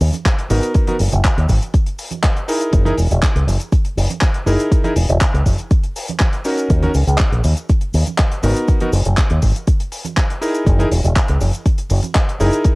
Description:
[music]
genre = nu-disco, nu disco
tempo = 121 BPM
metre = 4/4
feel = straight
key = F# mixolydian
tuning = A4 = 440 Hz
[part]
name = fingered electric bass with an envelope filter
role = bass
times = 0.0-12.5 s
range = E1 to D#2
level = -15 LUFS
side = equal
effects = none
[part]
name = damped 70s drum kit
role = drums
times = 0.0-12.8 s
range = cabasa, handclaps, hi-hat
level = -24 LUFS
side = equal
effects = none
[part]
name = congas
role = percussion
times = 0.1-12.5 s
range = none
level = -29 LUFS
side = right 5 dB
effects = none
[part]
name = electronic kick drum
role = drums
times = 0.3-12.8 s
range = none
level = -15 LUFS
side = equal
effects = none
[part]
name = clear electric grand piano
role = accompaniment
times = 0.5-12.8 s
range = B3 to A#4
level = -20 LUFS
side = equal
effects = sidechain pumping, cassette tape
[sound]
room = light reverb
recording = home recording on cassette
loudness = -14 LUFS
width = side -26 dB against mid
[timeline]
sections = 0.0-12.8 A section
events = none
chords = 0.0 N.C.; 0.5 G#m9 (rootless); 2.5 F#13; 6.7 D#m7; 8.4 G#m9 (rootless); 10.4 F#13

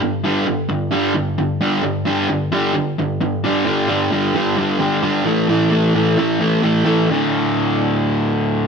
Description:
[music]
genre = rock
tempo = 131 BPM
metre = 4/4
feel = straight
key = unclear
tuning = A4 = 441 Hz
[part]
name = overdriven semi-hollow guitar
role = solo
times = 0.0-8.7 s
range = D2 to A3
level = -15 LUFS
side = equal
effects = none
[sound]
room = moderate large studio reverb, RT60 1.1 s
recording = band playing live in one room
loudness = -15 LUFS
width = side -6 dB against mid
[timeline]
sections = 0.0-3.4 A section; 3.4-7.1 B section; 7.1-8.7 C section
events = none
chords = 0.0 G5; 5.3 A5; 7.1 D5

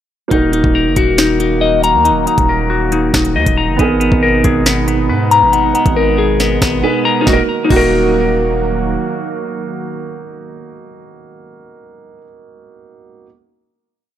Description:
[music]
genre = hip hop, drill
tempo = 138 BPM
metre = 4/4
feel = half-time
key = Eb minor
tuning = A4 = 443 Hz
[part]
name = dark concert grand piano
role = accompaniment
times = 0.3-13.3 s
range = Bb3 to Bb4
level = -20 LUFS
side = right 6 dB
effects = low-pass filter
[part]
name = warbly tape-like pad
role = sustained chords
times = 0.3-11.5 s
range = Cb3 to Gb4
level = -21 LUFS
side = right 5 dB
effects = chorus, built-in reverb
[part]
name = clean electric guitar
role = arpeggios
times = 0.3-12.2 s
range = Cb4 to Bb5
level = -14 LUFS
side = left 5 dB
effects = phaser, low-pass filter, digital delay
[part]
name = hard-hitting 808-style bass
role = bass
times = 0.3-9.0 s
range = Eb1 to Ab2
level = -19 LUFS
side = right 1 dB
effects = none
[part]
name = drill drum kit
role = drums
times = 0.3-7.8 s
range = crash cymbal, finger snaps, hi-hat, kick drum, rim click, snare drum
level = -16 LUFS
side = equal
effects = none
[sound]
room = light reverb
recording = none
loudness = -11 LUFS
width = side -10 dB against mid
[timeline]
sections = 0.3-7.3 hook; 7.3-10.7 final chord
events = drums muted 6.8-7.3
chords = 0.3 Ebm; 3.8 Abmadd9; 7.3 Ebm

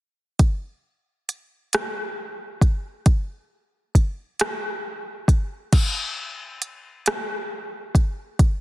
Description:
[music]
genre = R&B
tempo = 45 BPM (dotted quarters)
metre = 6/8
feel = straight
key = none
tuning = none
[part]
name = smooth R&B drum kit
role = drums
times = 0.4-8.6 s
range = crash cymbal, hi-hat, kick drum, rim click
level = -20 LUFS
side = equal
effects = none
[sound]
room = light reverb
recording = dense, heavily limited modern master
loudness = -22 LUFS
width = side -17 dB against mid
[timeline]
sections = 0.4-5.7 A section; 5.7-8.6 B section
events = none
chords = none

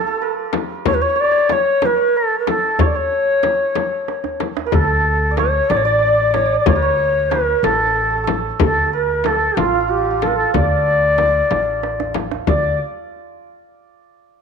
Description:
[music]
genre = Persian modal ensemble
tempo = 62 BPM (dotted quarters)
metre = 6/8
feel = straight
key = unclear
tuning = A4 = 439 Hz
[part]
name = breathy ney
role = melody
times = 0.0-12.8 s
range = F4 to D5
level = -17 LUFS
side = left 2 dB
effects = none
[part]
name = santur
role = second line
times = 0.0-13.5 s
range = F4 to D5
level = -23 LUFS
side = right 9 dB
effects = none
[part]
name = frame drum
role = percussion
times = 0.5-12.8 s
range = none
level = -22 LUFS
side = left 9 dB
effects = none
[part]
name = tombak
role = percussion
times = 0.5-12.8 s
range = none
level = -24 LUFS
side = right 4 dB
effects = none
[part]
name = upright bass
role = bass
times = 4.7-12.8 s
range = A1 to D2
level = -23 LUFS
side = left 1 dB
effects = none
[sound]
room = moderate echo chamber reverb, RT60 1.6 s, studio ambience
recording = 1960s-style stereo with parts hard left and right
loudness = -15 LUFS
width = side -6 dB against mid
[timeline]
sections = 0.0-12.5 A section; 12.5-14.4 B section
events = drum fill 4.1-4.7, 11.8-12.5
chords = none

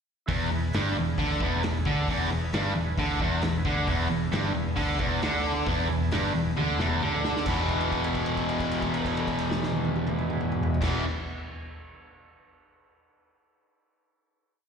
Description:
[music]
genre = blues rock power trio and southern rock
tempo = 133 BPM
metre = 4/4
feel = straight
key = E mixolydian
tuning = A4 = 440 Hz
[part]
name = overdriven tonewheel organ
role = sustained chords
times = 0.3-11.0 s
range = B3 to B4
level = -39 LUFS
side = right 2 dB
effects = slow rotary speaker, chorus vibrato
[part]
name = distorted electric guitar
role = riff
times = 0.3-11.0 s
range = E2 to E3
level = -26 LUFS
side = equal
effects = overdrive, slapback echo
[part]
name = vintage muted picked electric bass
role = bass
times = 0.3-11.0 s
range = E1 to D2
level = -31 LUFS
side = equal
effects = none
[part]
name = vintage drum kit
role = drums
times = 0.3-10.9 s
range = crash cymbal, hi-hat, kick drum, snare drum, toms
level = -32 LUFS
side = equal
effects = none
[sound]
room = small room ambience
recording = live gig heard through the venue's PA, recital hall reverb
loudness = -24 LUFS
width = side -6 dB against mid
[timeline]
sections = 0.3-7.5 riff; 7.5-11.1 final chord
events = drum fill 6.6-7.5; held note 7.5-10.8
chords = 0.3 E

